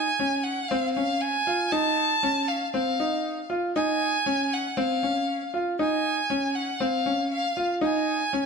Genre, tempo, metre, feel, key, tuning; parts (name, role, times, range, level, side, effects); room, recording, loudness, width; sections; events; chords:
electronica; 118 BPM; 4/4; straight; A4 = 440 Hz
rich violin; melody; 0.0-8.5 s; F5 to A5; -26 LUFS; right 1 dB
clear grand piano; riff; 0.0-8.5 s; C4 to F4; -26 LUFS; equal; ping-pong delay
moderate echo chamber reverb, RT60 1.8 s; -23 LUFS; side -5 dB against mid
0.0-8.5 A section
0.0 Dbadd9